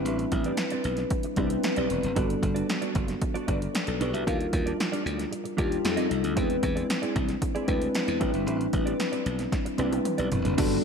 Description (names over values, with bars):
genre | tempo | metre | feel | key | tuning
polished 1980s jazz-funk pop | 114 BPM | 4/4 | straight | unclear | A4 = 440 Hz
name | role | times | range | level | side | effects
mellow tine electric piano | accompaniment | 0.0-10.8 s | F3 to D5 | -28 LUFS | left 2 dB | wide subtle chorus
mellow electric guitar | riff | 0.0-10.8 s | C4 to F5 | -34 LUFS | right 5 dB | ensemble chorus
glassy slap bass | bass | 0.0-10.8 s | E1 to F2 | -31 LUFS | equal | none
punchy analog drum machine | drums | 0.1-10.8 s | crash cymbal, hi-hat, kick drum, snare drum, toms | -30 LUFS | equal | overdrive, gated reverb
congas | percussion | 10.6-10.7 s | none | barely audible | none | none
room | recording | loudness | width
moderate lush hall reverb, RT60 1.9 s | bright 1980s-style digital production | -25 LUFS | side -6 dB against mid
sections
0.0-10.6 A section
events
drum fill 9.5-10.6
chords
0.0 Am11; 2.2 Gmaj7; 4.3 Ebmaj7; 5.8 F9; 6.4 E7b13; 8.2 Am11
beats
| 0.07 0.59 1.11 1.64 | 2.17 2.69 3.21 3.74 | 4.26 4.79 5.32 5.84 | 6.37 6.89 7.42 7.95 | 8.47 9.00 9.53 10.05 | 10.58